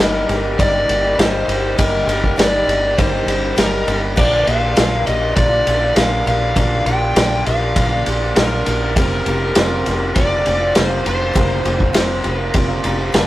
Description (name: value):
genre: folk rock and heartland rock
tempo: 100 BPM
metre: 4/4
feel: straight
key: unclear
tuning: A4 = 442 Hz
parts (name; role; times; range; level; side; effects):
- overdriven slide guitar; melody; 0.0-13.1 s; Bb4 to G5; -20 LUFS; equal; none
- picked acoustic archtop guitar; accompaniment; 0.0-13.3 s; G2 to Bb4; -27 LUFS; left 2 dB; none
- warm upright piano; accompaniment; 0.0-13.3 s; C4 to Bb5; -29 LUFS; right 2 dB; none
- raw garage guitar; riff; 0.0-13.3 s; F2 to G4; -23 LUFS; right 1 dB; overdrive
- fingered electric bass; bass; 0.0-13.3 s; F1 to Bb1; -22 LUFS; equal; none
- vintage drum kit; drums; 0.3-13.3 s; crash cymbal, kick drum, ride cymbal, snare drum; -18 LUFS; equal; none
room: moderate studio reverb, RT60 0.5 s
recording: rough rehearsal-room recording, tube saturation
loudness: -14 LUFS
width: side -15 dB against mid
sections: 0.0-13.3 A section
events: upright piano fill 12.5-13.3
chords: 0.0 Eb/G; 4.2 Bb; 9.0 Fsus4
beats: 0.58 1.18 | 1.78 2.38 2.98 3.58 | 4.17 4.77 5.37 5.97 | 6.57 7.16 7.76 8.36 | 8.96 9.55 10.15 10.75 | 11.35 11.95 12.54 13.14